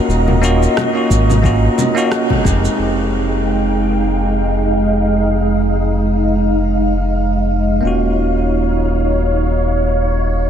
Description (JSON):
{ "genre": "sunset chillout", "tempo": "89 BPM", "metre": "4/4", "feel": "swing 56% on 16ths", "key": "F minor", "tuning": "A4 = 444 Hz", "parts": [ { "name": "bell-like tine electric piano", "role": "accompaniment", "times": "0.0-10.5 s", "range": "Ab3 to G4", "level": "-20 LUFS", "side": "right 1 dB", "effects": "auto-pan, tape echo" }, { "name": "soft string machine", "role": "sustained chords", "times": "0.0-10.5 s", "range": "Ab3 to G5", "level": "-18 LUFS", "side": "right 1 dB", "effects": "phaser, ensemble chorus" }, { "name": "round analog bass", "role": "bass", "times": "0.1-10.5 s", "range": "Eb1 to Ab1", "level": "-17 LUFS", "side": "equal", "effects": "none" }, { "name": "electronic shaker, congas and rim click", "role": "drums", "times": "0.1-2.8 s", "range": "none", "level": "-23 LUFS", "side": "equal", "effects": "none" }, { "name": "electronic kick drum", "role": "drums", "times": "1.1-2.6 s", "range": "none", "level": "-18 LUFS", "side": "equal", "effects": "none" } ], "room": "moderate huge ambient reverb, RT60 7.3 s", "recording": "dreamy mix soaked in reverb, faint mains hum", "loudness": "-13 LUFS", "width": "side -9 dB against mid", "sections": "0.0-2.8 A section; 2.8-10.5 B section", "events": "band accent 2.1-2.4", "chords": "0.0 Ebm9; 2.8 Fm9; 7.8 Ebm9" }